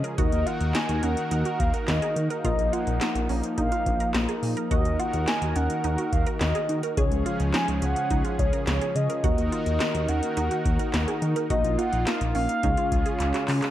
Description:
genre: synth-pop.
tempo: 106 BPM.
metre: 4/4.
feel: straight.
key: Eb minor.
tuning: A4 = 440 Hz.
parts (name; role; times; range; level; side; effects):
mellow horn-like synth lead; melody; 0.0-13.4 s; Db5 to Ab5; -30 LUFS; equal; chorus.
soft electric-piano-like synth keys; accompaniment; 0.0-13.7 s; F3 to Eb5; -33 LUFS; left 5 dB; chorus.
brassy analog pad; sustained chords; 0.0-13.7 s; Db3 to Bb4; -31 LUFS; right 1 dB; chorus.
resonant blip pluck; arpeggios; 0.0-13.7 s; Db4 to Bb4; -34 LUFS; right 5 dB; chorus, tape echo.
fat analog bass; bass; 0.0-13.6 s; Bb1 to Eb3; -27 LUFS; equal; none.
electro analog drum machine; drums; 0.0-13.7 s; handclaps, hi-hat, kick drum, snare drum; -28 LUFS; equal; gated reverb.
room: light reverb.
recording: none.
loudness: -22 LUFS.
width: side -12 dB against mid.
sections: 0.0-13.7 A section.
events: drum fill 13.2-13.7.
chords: 0.2 Ebm; 2.4 Bbsus4; 4.7 Ebm; 7.0 Db; 9.2 Ebm; 11.5 Bbsus4; 12.6 Db.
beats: | 0.18 0.75 1.31 1.88 | 2.45 3.01 3.58 4.14 | 4.71 5.28 5.84 6.41 | 6.97 7.54 8.11 8.67 | 9.24 9.80 10.37 10.94 | 11.50 12.07 12.63 13.20.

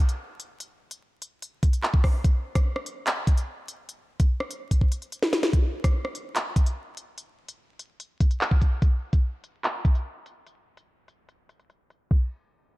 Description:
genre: hip hop.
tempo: 146 BPM.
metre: 4/4.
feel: half-time.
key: none.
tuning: none.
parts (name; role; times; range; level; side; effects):
drill drum kit; drums; 0.1-12.2 s; crash cymbal, handclaps, hi-hat, kick drum, rim click, snare drum; -22 LUFS; equal; none.
room: little or no reverb.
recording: dark, warm production, vinyl crackle, low-pass filter.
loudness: -22 LUFS.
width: side -20 dB against mid.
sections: 0.0-5.5 A section; 5.5-12.1 B section.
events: drum fill 4.7-5.5.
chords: none.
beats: 0.19 | 0.60 1.01 1.42 1.83 | 2.25 2.66 3.07 3.48 | 3.89 4.30 4.71 5.12 | 5.53 5.94 6.36 6.77 | 7.18 7.59 8.00 8.41 | 8.82 9.23 9.64 10.05 | 10.46 10.88 11.29 11.70 | 12.11.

